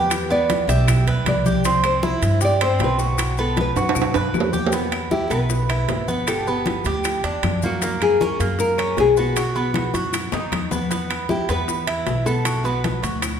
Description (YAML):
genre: latin, Cuban son and guajira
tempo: 156 BPM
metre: 4/4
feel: straight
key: E minor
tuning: A4 = 439 Hz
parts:
  - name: nylon-string guitar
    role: melody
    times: 0.0-13.0 s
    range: F#4 to E5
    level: -23 LUFS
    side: left 2 dB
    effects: none
  - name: Cuban tres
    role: arpeggios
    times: 0.0-13.4 s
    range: A#3 to B4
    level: -24 LUFS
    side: right 3 dB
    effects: none
  - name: upright bass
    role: bass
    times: 0.0-13.4 s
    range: G1 to G2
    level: -24 LUFS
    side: equal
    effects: none
  - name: bongos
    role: percussion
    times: 0.1-13.4 s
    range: none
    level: -31 LUFS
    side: left 5 dB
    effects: none
  - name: claves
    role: percussion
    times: 0.1-13.4 s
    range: none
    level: -36 LUFS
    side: left 5 dB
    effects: none
  - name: congas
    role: percussion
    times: 0.1-13.4 s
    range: none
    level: -28 LUFS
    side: left 2 dB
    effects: none
  - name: maracas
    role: percussion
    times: 0.1-13.4 s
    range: none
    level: -36 LUFS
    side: left 8 dB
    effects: none
  - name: timbales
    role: percussion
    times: 0.1-13.4 s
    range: none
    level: -28 LUFS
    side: right 5 dB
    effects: none
room: wet scoring stage reverb, RT60 2.0 s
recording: recorded in a church or concert hall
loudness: -18 LUFS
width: side -8 dB against mid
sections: 0.0-4.7 A section; 4.7-13.4 B section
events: nylon-string guitar solo 0.0-4.7; drum fill 3.8-4.7, 9.7-10.9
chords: 0.1 Em; 1.7 C; 3.2 B5; 4.7 Em; 6.3 G; 7.8 F#; 9.4 B; 10.9 E5; 12.5 Bm